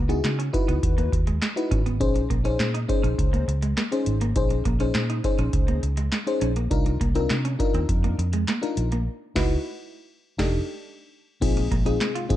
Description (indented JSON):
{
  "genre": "early-eighties boogie funk",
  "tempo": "102 BPM",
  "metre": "4/4",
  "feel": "straight",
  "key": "unclear",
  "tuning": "A4 = 441 Hz",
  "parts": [
    { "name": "electric guitar at the edge of break-up", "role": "riff", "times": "0.0-12.3 s", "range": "Ab3 to F4", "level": "-32 LUFS", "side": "right 3 dB", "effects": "wide subtle chorus" },
    { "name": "vintage muted fingered electric bass", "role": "bass", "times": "0.0-12.4 s", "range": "F1 to Db3", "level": "-25 LUFS", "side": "equal", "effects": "none" },
    { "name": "FM electric piano with soft pad layer", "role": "accompaniment", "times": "0.1-12.4 s", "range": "C4 to C5", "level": "-27 LUFS", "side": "left 3 dB", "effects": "chorus" },
    { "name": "booming analog drum machine", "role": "drums", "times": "0.1-12.4 s", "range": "crash cymbal, handclaps, hi-hat, kick drum, snare drum", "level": "-25 LUFS", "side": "equal", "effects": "none" },
    { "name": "chorused pulse-width pad", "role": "sustained chords", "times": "11.4-12.4 s", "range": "C3 to Eb4", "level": "-35 LUFS", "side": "equal", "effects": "none" }
  ],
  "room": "light reverb, digital ambience",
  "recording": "dark, warm production",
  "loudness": "-21 LUFS",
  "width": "side -13 dB against mid",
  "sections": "0.0-11.4 A section",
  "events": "band accent 9.1-11.4",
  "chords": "0.0 Dbm11; 2.0 Bbm11; 6.7 Cm11; 9.1 Dbm11; 10.2 F13; 11.4 Bb9sus4"
}